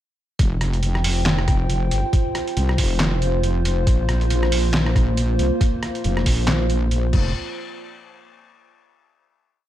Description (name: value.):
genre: deep dubstep.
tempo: 138 BPM.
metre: 4/4.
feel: swing 57% on 16ths, half-time.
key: unclear.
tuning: A4 = 438 Hz.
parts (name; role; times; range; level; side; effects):
dark analog pad; sustained chords; 0.4-7.3 s; Bb3 to G5; -26 LUFS; equal; chorus.
wobble bass; bass; 0.4-7.3 s; F1 to C2; -20 LUFS; equal; chorus.
electronic kick drum; drums; 0.4-7.2 s; none; -20 LUFS; equal; none.
trip hop sampler-style drum kit; drums; 0.4-7.2 s; crash cymbal, handclaps, hi-hat, rim click, snare drum; -25 LUFS; equal; none.
room: digital ambience.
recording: none.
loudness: -18 LUFS.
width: side -13 dB against mid.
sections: 0.4-7.3 drop; 7.3-9.1 final hit.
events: drop 0.4-7.3.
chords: 0.4 F5; 3.9 Bb5; 7.1 F5; 7.3 N.C..